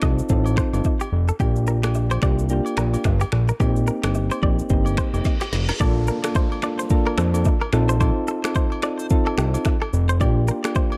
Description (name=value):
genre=afrobeats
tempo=109 BPM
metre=4/4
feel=swing 58% on 16ths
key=Bb major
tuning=A4 = 440 Hz
part: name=soft electric-piano-like synth keys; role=accompaniment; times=0.0-11.0 s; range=Bb3 to A4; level=-27 LUFS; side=equal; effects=chorus
part: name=direct-recorded clean electric guitar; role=riff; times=0.0-10.9 s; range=G4 to Eb5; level=-32 LUFS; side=equal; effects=delay
part: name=fat analog bass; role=bass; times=0.0-10.5 s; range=F1 to F2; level=-23 LUFS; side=equal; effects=none
part: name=afro-pop drum kit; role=drums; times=0.0-10.9 s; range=finger snaps, kick drum, rim click, shaker, snare drum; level=-25 LUFS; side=equal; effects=none
part: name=agogo bells and woodblock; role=percussion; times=0.5-11.0 s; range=none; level=-39 LUFS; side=equal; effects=none
part: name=reverse cymbal and downlifter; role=sound effects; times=5.0-10.2 s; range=none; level=-39 LUFS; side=equal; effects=none
room=digital ambience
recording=dark, warm production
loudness=-21 LUFS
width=mono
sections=0.0-5.8 A section; 5.8-11.0 B section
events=reverse cymbal 5.0-5.8; drum fill 5.3-5.8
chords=0.0 F7; 1.4 Gm7/Bb; 3.6 Cm7; 5.8 Bbmaj7; 7.7 F7/Bb; 10.2 Gm7/Bb